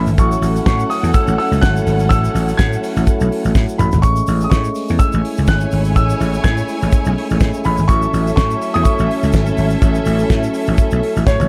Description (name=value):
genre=disco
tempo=124 BPM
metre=4/4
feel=swing 56% on 16ths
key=unclear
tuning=A4 = 441 Hz
part: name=clear studio string section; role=second line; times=0.0-11.5 s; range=C#4 to G#5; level=-25 LUFS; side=equal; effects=none
part: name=tonewheel organ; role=sustained chords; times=0.0-11.5 s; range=E3 to E4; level=-26 LUFS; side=equal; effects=overdrive, chorus vibrato, slow rotary speaker
part: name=vintage slap bass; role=bass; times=0.0-11.5 s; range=G#1 to A2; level=-19 LUFS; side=equal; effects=none
part: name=tube shaker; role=percussion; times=0.1-11.5 s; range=none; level=-41 LUFS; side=equal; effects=none
part: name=warm grand piano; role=melody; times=0.2-11.5 s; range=C#5 to G#6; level=-24 LUFS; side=equal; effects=none
part: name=damped 70s drum kit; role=drums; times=0.2-11.5 s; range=hi-hat, kick drum, snare drum, toms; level=-18 LUFS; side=equal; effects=none
room=small room ambience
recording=dark, warm production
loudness=-16 LUFS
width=mono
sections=0.0-11.5 A section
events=drum fill 3.5-4.0, 11.3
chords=0.2 F#m7; 4.0 Amaj7; 7.9 F#m7